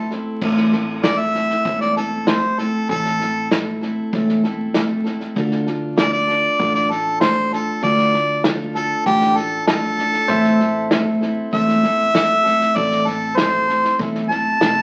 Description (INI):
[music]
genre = honky-tonk and classic country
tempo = 97 BPM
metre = 4/4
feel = straight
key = A minor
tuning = A4 = 438 Hz
[part]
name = clear harmonica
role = melody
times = 0.0-14.8 s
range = G4 to A5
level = -20 LUFS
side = equal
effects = none
[part]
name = picked steel-string acoustic guitar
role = accompaniment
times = 0.0-14.8 s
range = A2 to A4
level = -24 LUFS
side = equal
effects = none
[part]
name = pedal steel guitar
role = sustained chords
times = 0.0-0.4, 10.3-14.8 s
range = C5 to E5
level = -28 LUFS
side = equal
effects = none
[part]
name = hollow-body short-scale fingered electric bass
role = bass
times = 0.0-14.8 s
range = E1 to D2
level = -35 LUFS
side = equal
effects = none
[part]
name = natural country drum kit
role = drums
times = 0.1-14.8 s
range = crash cymbal, hi-hat, kick drum, snare drum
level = -25 LUFS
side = equal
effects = none
[sound]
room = wet studio reverb, RT60 0.8 s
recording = very old 78 rpm record, vinyl crackle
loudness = -18 LUFS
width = mono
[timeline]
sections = 0.4-14.8 A section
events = harmonica solo 0.4-14.8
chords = 0.4 Am; 5.4 Dm; 10.3 Am